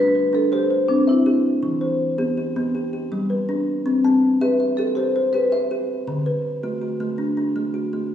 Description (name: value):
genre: southern african traditional, mbira-style interlocking cycle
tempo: 108 BPM (dotted quarters)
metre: 12/8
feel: straight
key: unclear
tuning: A4 = 440 Hz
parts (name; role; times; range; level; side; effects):
- marimba with medium mallets; melody; 0.0-5.9 s; D4 to C5; -21 LUFS; right 1 dB; slapback echo
- kalimba; arpeggios; 0.0-8.1 s; D3 to A5; -20 LUFS; left 2 dB; none
room: wet recital hall reverb, RT60 1.4 s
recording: heard from further back in the room, small room ambience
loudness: -18 LUFS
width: side -9 dB against mid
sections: 0.0-8.1 A section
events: none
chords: 0.0 G (rootless); 0.5 C; 1.6 Em; 2.7 G; 3.9 C; 6.1 D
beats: 0.52 1.07 | 1.63 2.19 2.74 3.30 | 3.85 4.41 4.97 5.52 | 6.08 6.63 7.19 7.75